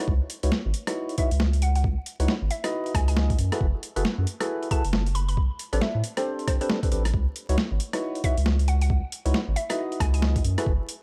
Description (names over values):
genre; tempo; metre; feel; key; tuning
UK garage, two-step garage; 136 BPM; 4/4; swing 61% on 16ths; C# minor; A4 = 441 Hz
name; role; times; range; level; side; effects
percussive organ stab; stabs; 0.0-10.7 s; C4 to D#5; -33 LUFS; equal; subtle chorus, analog delay
saturated sub bass; bass; 0.1-10.8 s; F#1 to A2; -26 LUFS; equal; none
electronic kick drum; drums; 0.1-10.8 s; none; -27 LUFS; equal; overdrive
boom bap sampler-style drum kit; drums; 0.3-11.0 s; hi-hat, rim click, snare drum; -32 LUFS; equal; overdrive
hollow square pluck; melody; 1.2-10.2 s; C5 to B5; -36 LUFS; equal; chorus
room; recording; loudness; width
digital ambience; dry, gritty hardware recording, vinyl crackle; -25 LUFS; mono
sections
0.0-11.0 A section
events
none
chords
0.1 C#m11; 3.4 F#m11; 5.4 Am11; 7.1 C#m11; 10.4 F#m11